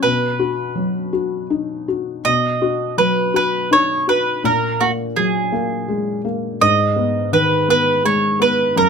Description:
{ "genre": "children's music, lullaby", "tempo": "83 BPM", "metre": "3/4", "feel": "straight", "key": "B major", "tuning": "A4 = 437 Hz", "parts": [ { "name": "mandolin", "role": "melody", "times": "0.0-8.9 s", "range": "F#4 to D#5", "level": "-16 LUFS", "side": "right 4 dB", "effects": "none" }, { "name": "felt-muted upright piano", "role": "accompaniment", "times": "0.0-8.9 s", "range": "F#2 to F#4", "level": "-20 LUFS", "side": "left 4 dB", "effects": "none" } ], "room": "light reverb", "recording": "close, detailed microphones", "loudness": "-16 LUFS", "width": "side -6 dB against mid", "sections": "0.0-2.2 A section; 2.2-8.9 A section", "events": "none", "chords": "0.0 B; 4.4 F#add9/A#; 6.6 G#m", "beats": "| 0.04 0.77 1.50 | 2.25 2.98 3.71 | 4.44 5.17 5.89 | 6.61 7.32 8.04 | 8.76" }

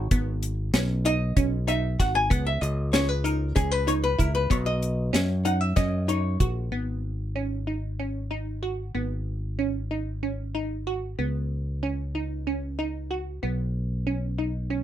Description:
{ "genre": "progressive instrumental, band music in an uneven meter", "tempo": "189 BPM (eighths)", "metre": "7/8", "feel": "straight", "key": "G# minor", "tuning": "A4 = 440 Hz", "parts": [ { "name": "archtop guitar, miked and amplified", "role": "accompaniment", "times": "0.0-6.4 s", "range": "G#4 to G#5", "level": "-28 LUFS", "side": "left 2 dB", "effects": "none" }, { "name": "fingered electric bass", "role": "bass", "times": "0.0-14.8 s", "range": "G#1 to F#2", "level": "-28 LUFS", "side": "equal", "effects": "none" }, { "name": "glassy wavetable pluck", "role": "arpeggios", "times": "0.1-14.8 s", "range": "B3 to F#4", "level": "-30 LUFS", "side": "right 2 dB", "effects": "chorus" }, { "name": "deep reggae drum kit", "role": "drums", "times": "0.1-6.5 s", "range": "hi-hat, kick drum, snare drum", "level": "-24 LUFS", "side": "equal", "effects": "none" } ], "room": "light reverb", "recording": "none", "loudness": "-24 LUFS", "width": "side -11 dB against mid", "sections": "0.0-6.7 A section; 6.7-14.8 B section", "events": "hollow-body jazz guitar solo 0.0-6.7", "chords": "0.0 G#m7; 2.3 C#m7; 4.5 Bmaj7; 6.7 G#m; 11.2 C#7sus2; 13.4 B", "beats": "| 0.11 0.42 0.74 1.05 1.36 1.68 1.99 | 2.31 2.62 2.93 3.25 3.56 3.88 4.19 | 4.51 4.82 5.14 5.45 5.77 6.09 6.40 | 6.72 7.04 7.36 7.67 7.99 8.31 8.63 | 8.95 9.27 9.59 9.91 10.23 10.55 10.87 | 11.19 11.51 11.83 12.15 12.47 12.79 13.11 | 13.43 13.75 14.07 14.39 14.71" }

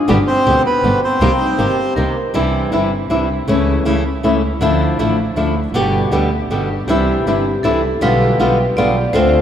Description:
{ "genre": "tango", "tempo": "159 BPM", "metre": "3/4", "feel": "rubato", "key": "C major", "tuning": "A4 = 440 Hz", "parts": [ { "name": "vibraphone with medium hard mallets", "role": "second line", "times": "0.0-2.3, 6.9-9.4 s", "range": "D4 to D5", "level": "-22 LUFS", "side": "left 1 dB", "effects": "none" }, { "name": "flamenco guitar", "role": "accompaniment", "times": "0.1-9.4 s", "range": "B2 to G4", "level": "-16 LUFS", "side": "left 1 dB", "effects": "none" }, { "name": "muted studio string section", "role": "stabs", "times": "0.1-9.4 s", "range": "F3 to G4", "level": "-26 LUFS", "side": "right 3 dB", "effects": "none" }, { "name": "warm double bass", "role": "bass", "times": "0.1-9.4 s", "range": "G1 to D2", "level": "-20 LUFS", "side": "right 1 dB", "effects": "none" }, { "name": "bandoneon", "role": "melody", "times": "0.3-1.9 s", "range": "B3 to C5", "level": "-19 LUFS", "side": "equal", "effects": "none" } ], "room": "wet cathedral reverb, RT60 4.9 s", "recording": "in a vast, echoing space", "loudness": "-13 LUFS", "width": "side -9 dB against mid", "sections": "0.0-2.3 A section; 2.3-9.4 B section", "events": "none", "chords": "0.1 G; 1.2 Cm7; 2.3 Cadd9; 3.5 A/C#; 4.6 Dmadd9; 5.7 G; 6.9 Cadd9; 8.0 G7/B", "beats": "| 0.08 0.46 0.83 | 1.21 1.59 1.97 | 2.35 2.73 3.11 | 3.48 3.86 4.24 | 4.61 4.99 5.37 | 5.74 6.12 6.50 | 6.88 7.26 7.64 | 8.02 8.39 8.77 | 9.15" }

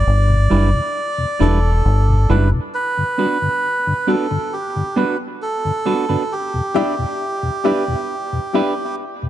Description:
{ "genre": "reggae", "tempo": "67 BPM", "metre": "4/4", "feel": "straight", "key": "E minor", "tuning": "A4 = 440 Hz", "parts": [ { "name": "melodica", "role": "melody", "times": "0.0-9.0 s", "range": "G4 to D5", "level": "-21 LUFS", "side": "right 2 dB", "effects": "dub echo" }, { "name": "deep dub fingered electric bass", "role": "bass", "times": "0.0-2.5 s", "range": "E1 to G1", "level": "-14 LUFS", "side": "equal", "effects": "none" }, { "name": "mellow tonewheel organ", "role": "accompaniment", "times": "0.3-9.3 s", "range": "E2 to F#4", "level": "-24 LUFS", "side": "left 2 dB", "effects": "slow rotary speaker" }, { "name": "semi-hollow electric guitar", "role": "accompaniment", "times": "0.5-8.7 s", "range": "G3 to B4", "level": "-24 LUFS", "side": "right 6 dB", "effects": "dub echo" }, { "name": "warm upright piano", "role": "stabs", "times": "6.7-8.7 s", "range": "G4 to E5", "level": "-23 LUFS", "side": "left 6 dB", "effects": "dub echo" } ], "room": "light reverb, small room ambience", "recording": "nothing above 10.9 kHz", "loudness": "-16 LUFS", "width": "side -12 dB against mid", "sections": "0.0-9.3 A section", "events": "break 0.0-9.3", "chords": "0.0 Em7; 2.7 Gmaj7; 6.3 Em7", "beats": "0.06 0.95 1.84 | 2.73 3.63 4.52 5.41 | 6.31 7.20 8.09 8.99" }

